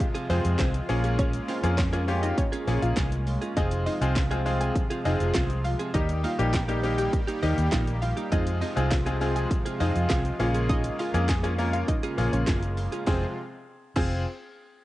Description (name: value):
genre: dance-pop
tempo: 101 BPM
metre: 4/4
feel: straight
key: F minor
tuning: A4 = 441 Hz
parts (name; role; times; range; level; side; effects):
- analog pluck; melody; 0.0-14.2 s; C4 to Ab5; -34 LUFS; left 1 dB; chorus, sidechain pumping
- bright grand piano; accompaniment; 0.0-14.2 s; G3 to Bb4; -31 LUFS; left 2 dB; sidechain pumping, cassette tape
- soft supersaw; sustained chords; 0.0-13.3 s; C3 to G4; -34 LUFS; right 1 dB; sidechain pumping, cassette tape
- direct-recorded clean electric guitar; riff; 0.0-14.1 s; Bb3 to Ab4; -35 LUFS; right 3 dB; wide subtle chorus, cassette tape
- house drum kit; drums; 0.0-14.1 s; crash cymbal, handclaps, hi-hat, kick drum, shaker, snare drum; -28 LUFS; equal; cassette tape
- vintage muted fingered electric bass; bass; 0.3-14.2 s; F1 to F2; -27 LUFS; equal; sidechain pumping
- group handclap; percussion; 0.6-14.2 s; none; -43 LUFS; right 4 dB; none
room: light reverb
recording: home recording on cassette, nothing above 10.3 kHz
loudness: -23 LUFS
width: side -16 dB against mid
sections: 0.0-13.1 A section; 13.1-14.8 B section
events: drop 0.0-13.1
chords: 0.0 Fm; 0.9 Bbm7; 3.6 Fm; 5.9 Eb; 8.3 Fm; 10.4 Bbm7; 13.1 Fm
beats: 0.00 0.60 | 1.19 1.78 2.38 2.97 | 3.57 4.16 4.75 5.35 | 5.94 6.54 7.13 7.72 | 8.32 8.91 9.51 10.10 | 10.70 11.29 11.88 12.48 | 13.07 13.67